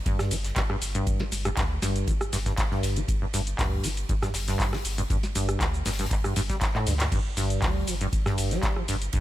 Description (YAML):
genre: acid house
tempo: 119 BPM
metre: 4/4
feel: straight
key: unclear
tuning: A4 = 437 Hz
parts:
  - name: acid bass, saw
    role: riff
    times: 0.1-9.2 s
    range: G2 to G3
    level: -30 LUFS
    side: equal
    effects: lush chorus, sidechain pumping, ping-pong delay
  - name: booming analog drum machine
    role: drums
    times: 0.1-9.2 s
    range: crash cymbal, handclaps, hi-hat, rim click, shaker, snare drum, toms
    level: -30 LUFS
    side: equal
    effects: studio ambience
  - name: electronic kick drum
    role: drums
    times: 0.1-9.2 s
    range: none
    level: -28 LUFS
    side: equal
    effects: studio ambience
  - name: tight funk drum kit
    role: drums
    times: 0.1-9.2 s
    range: hi-hat, ride cymbal, snare drum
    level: -40 LUFS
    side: right 1 dB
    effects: sidechain pumping on cymbals, high-pass filter on cymbals, studio ambience, sidechain pumping on hats, high-pass filter on hats, high-pass filter on snare, high-pass filter on room
  - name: saturated sub bass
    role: bass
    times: 0.3-9.1 s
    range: G1 to D2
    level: -30 LUFS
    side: equal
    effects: sidechain pumping
room: small room ambience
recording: none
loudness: -24 LUFS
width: side -14 dB against mid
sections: 0.0-9.2 A section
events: drum fill 6.7-7.1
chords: none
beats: 0.06 0.56 | 1.07 1.57 2.08 2.58 | 3.08 3.59 4.09 4.60 | 5.10 5.61 6.11 6.61 | 7.12 7.62 8.13 8.63 | 9.13